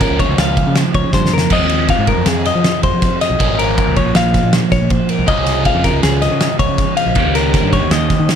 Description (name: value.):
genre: math rock and midwest emo.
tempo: 159 BPM.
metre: 5/4.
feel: straight.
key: unclear.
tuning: A4 = 440 Hz.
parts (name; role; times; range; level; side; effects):
clean electric guitar; arpeggios; 0.0-8.3 s; Ab4 to F5; -18 LUFS; left 8 dB; none.
overdriven semi-hollow guitar; riff; 0.0-8.4 s; F2 to G4; -17 LUFS; right 3 dB; phaser.
modern bright fingered electric bass; bass; 0.0-8.4 s; Ab1 to F3; -19 LUFS; right 1 dB; none.
loose indie drum kit; drums; 0.0-8.4 s; crash cymbal, kick drum, ride cymbal, snare drum; -17 LUFS; right 1 dB; none.
room: little or no reverb.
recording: none.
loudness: -12 LUFS.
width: side -8 dB against mid.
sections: 0.0-8.4 A section.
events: drum fill 1.1-1.5.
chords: 0.0 Bbm; 1.5 Fm7; 3.4 Bbm7; 5.3 Dbmaj7; 7.2 Eb7.